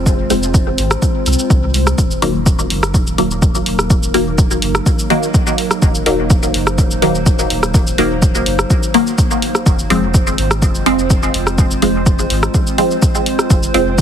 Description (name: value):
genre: dub techno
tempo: 125 BPM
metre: 4/4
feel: straight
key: Eb dorian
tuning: A4 = 440 Hz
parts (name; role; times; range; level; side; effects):
- warbly tape-like pad; sustained chords; 0.0-14.0 s; Gb3 to C5; -22 LUFS; equal; chorus, built-in reverb, sidechain pumping
- soft dub sub bass; bass; 0.0-14.0 s; Eb1 to C2; -21 LUFS; equal; sidechain pumping
- electronic kick drum; drums; 0.1-14.0 s; none; -14 LUFS; equal; overdrive
- punchy analog drum machine; drums; 0.1-14.0 s; hi-hat, rim click, shaker; -20 LUFS; equal; dub echo
- filtered dub chord stab; stabs; 0.3-13.9 s; Eb3 to C4; -17 LUFS; equal; phaser, sidechain pumping, dub echo
room: little or no reverb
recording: heavily compressed radio sound, multiband compression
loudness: -12 LUFS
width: side -9 dB against mid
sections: 0.0-2.0 A section; 2.0-14.0 A section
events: none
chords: 0.0 Fm; 2.0 Ebm; 9.7 Fm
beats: | 0.06 0.54 1.02 1.50 | 1.98 2.46 2.94 3.42 | 3.90 4.38 4.86 5.34 | 5.82 6.30 6.78 7.26 | 7.74 8.22 8.70 9.18 | 9.66 10.14 10.62 11.10 | 11.58 12.06 12.54 13.02 | 13.50 13.98